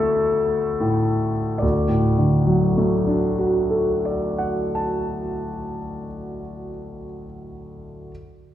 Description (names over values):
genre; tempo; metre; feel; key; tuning
classical, romantic nocturne for solo piano; 21-30 BPM (dotted quarters); 6/8; rubato; D major; A4 = 440 Hz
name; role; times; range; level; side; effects
clear concert grand piano; solo; 0.0-8.1 s; D2 to A5; -20 LUFS; equal; none
room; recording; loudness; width
wet scoring stage reverb, RT60 1.6 s; heard from further back in the room; -19 LUFS; side -12 dB against mid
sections
0.0-1.6 A section; 1.6-5.8 B section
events
slowing down 0.0-1.6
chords
0.0 A7/D; 1.6 D